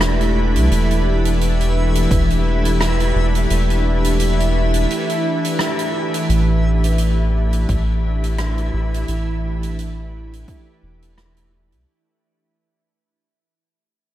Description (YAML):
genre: ambient dub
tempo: 86 BPM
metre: 4/4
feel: swing 56% on 16ths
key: unclear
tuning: A4 = 438 Hz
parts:
  - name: soft additive organ-like pad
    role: sustained chords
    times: 0.0-11.9 s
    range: E3 to B4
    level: -22 LUFS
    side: equal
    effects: ensemble chorus, built-in reverb
  - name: soft dub sub bass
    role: bass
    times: 0.0-11.9 s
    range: E1 to C2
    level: -18 LUFS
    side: equal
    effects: tube saturation
  - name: soft-mallet drum kit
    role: drums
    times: 0.0-11.8 s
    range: hi-hat, rim click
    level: -27 LUFS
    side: right 1 dB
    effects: none
  - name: backwards swelling texture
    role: texture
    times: 0.0-11.9 s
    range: E4 to E5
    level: -26 LUFS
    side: right 1 dB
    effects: built-in reverb
  - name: electronic kick drum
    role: drums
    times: 2.1-2.3, 7.7-10.6 s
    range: none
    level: -20 LUFS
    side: equal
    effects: overdrive
room: little or no reverb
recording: none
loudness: -16 LUFS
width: side -13 dB against mid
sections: 0.0-6.3 A section; 6.3-11.9 B section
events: break 4.9-6.3; fade-out 6.3-11.9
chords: 0.0 Am7; 0.7 Em7; 6.3 A7(no3)